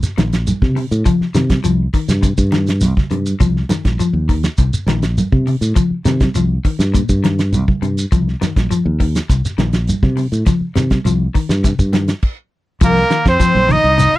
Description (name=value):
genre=afrobeat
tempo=102 BPM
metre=4/4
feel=straight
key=C dorian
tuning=A4 = 440 Hz
part: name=electric guitar at the edge of break-up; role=arpeggios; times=0.0-14.2 s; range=Bb2 to F3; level=-20 LUFS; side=left 5 dB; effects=none
part: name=damped 70s drum kit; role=drums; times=0.0-14.2 s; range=crash cymbal, hi-hat, kick drum, snare drum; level=-16 LUFS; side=equal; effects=none
part: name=shekere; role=percussion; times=0.0-14.1 s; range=none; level=-22 LUFS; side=right 1 dB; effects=none
part: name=fingered electric bass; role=bass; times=0.2-14.2 s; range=Bb1 to C3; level=-17 LUFS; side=equal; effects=none
part: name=congas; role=percussion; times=0.2-14.1 s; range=none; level=-22 LUFS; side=right 3 dB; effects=none
part: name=bright trumpet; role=melody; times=12.8-14.2 s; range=Bb4 to Eb5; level=-14 LUFS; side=equal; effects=none
part: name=growling tenor saxophone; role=second line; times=12.8-14.2 s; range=Bb3 to Eb4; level=-18 LUFS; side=right 4 dB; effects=none
room=little or no reverb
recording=dry, close 1970s-style studio recording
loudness=-13 LUFS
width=side -17 dB against mid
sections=0.0-12.8 A section; 12.8-14.2 B section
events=stop 12.2-12.8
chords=0.0 Cm7